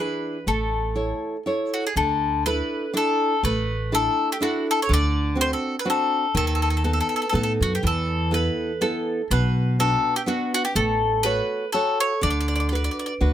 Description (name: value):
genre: italian folk, Italian serenade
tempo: 122 BPM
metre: 3/4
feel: swing 55% on 8ths, rubato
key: D major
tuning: A4 = 439 Hz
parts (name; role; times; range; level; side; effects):
- bowl-back mandolin; melody; 0.0-13.1 s; F#4 to D5; -24 LUFS; left 3 dB; none
- nylon-string guitar; accompaniment; 0.0-13.3 s; B2 to C#5; -25 LUFS; right 2 dB; none
- upright bass; bass; 0.5-13.3 s; A1 to A2; -24 LUFS; equal; none
room: light reverb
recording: close, detailed microphones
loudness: -20 LUFS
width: side -10 dB against mid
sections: 0.0-2.0 A section; 2.0-13.3 B section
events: none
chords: 0.5 A; 2.0 Dsus2; 3.4 Asus4; 4.9 D7; 6.3 B7/D#; 7.8 Esus4; 9.3 Bm; 10.8 A6; 12.2 D6